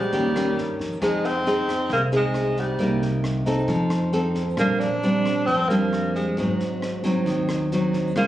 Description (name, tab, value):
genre	bossa nova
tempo	135 BPM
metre	4/4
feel	straight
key	F minor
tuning	A4 = 436 Hz
part	breathy tenor saxophone	melody	0.0-8.3 s	G3 to D4	-24 LUFS	equal	none
part	nylon-string guitar	accompaniment	0.0-8.3 s	Ab2 to A4	-22 LUFS	equal	none
part	upright bass	bass	0.0-8.3 s	Ab1 to G2	-30 LUFS	equal	none
part	compact cocktail drum kit	drums	0.1-8.3 s	kick drum, rim click, snare drum	-36 LUFS	equal	none
room	light reverb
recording	recorded on a phone in the room, club reverb, compression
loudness	-20 LUFS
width	side -13 dB against mid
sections	0.0-1.0 A section; 1.0-8.3 B section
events	none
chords	0.1 Eb7; 1.0 Fm7; 2.8 Cm7; 3.7 F7; 4.6 Bb69; 6.4 Ab7